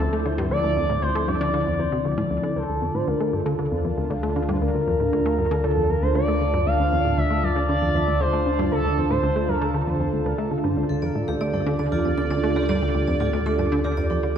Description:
ambient, sequencer-driven space music; 117 BPM; 4/4; straight; D minor; A4 = 438 Hz
expressive portamento lead; melody; 0.0-10.5 s; A4 to F5; -25 LUFS; right 1 dB; wide subtle chorus, tape echo
sweeping resonant pad; sustained chords; 0.0-14.4 s; D3 to A5; -26 LUFS; equal; chorus
plucky analog bass; riff; 0.0-14.4 s; D2 to A3; -26 LUFS; left 1 dB; analog chorus, cassette tape, tape echo
warm sub bass; bass; 0.0-14.4 s; D2; -28 LUFS; left 1 dB
vibraphone with medium hard mallets; arpeggios; 10.9-14.4 s; D4 to D5; -26 LUFS; right 4 dB; auto-pan, tape echo
wet echo chamber reverb, RT60 2.2 s; echo-heavy mix; -20 LUFS; side -8 dB against mid
0.0-2.6 A section; 2.6-14.4 B section
0.0 Dm7; 2.6 Dm

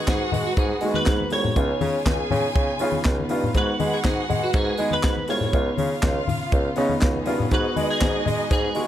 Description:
disco; 121 BPM; 4/4; straight; G# dorian; A4 = 440 Hz
clean electric guitar; melody; 0.0-8.9 s; F#4 to C#5; -28 LUFS; right 1 dB; ensemble chorus
warm studio violin section; second line; 0.0-8.9 s; G#3 to G#5; -31 LUFS; left 1 dB
clear baby grand piano; accompaniment; 0.0-8.9 s; D#3 to F#4; -29 LUFS; right 1 dB
clear studio string section; sustained chords; 0.0-8.9 s; C#3 to B4; -34 LUFS; equal
warm bassoon; bass; 0.1-8.9 s; B#1 to G#3; -26 LUFS; equal
tight funk drum kit; drums; 0.1-8.9 s; handclaps, hi-hat, kick drum, snare drum; -24 LUFS; equal
congas; percussion; 0.1-8.9 s; -29 LUFS; left 5 dB
little or no reverb; -20 LUFS; side -11 dB against mid
0.0-8.9 A section
0.0 G#m7; 1.6 C#9; 3.5 G#m7; 5.5 C#9; 7.5 G#m7

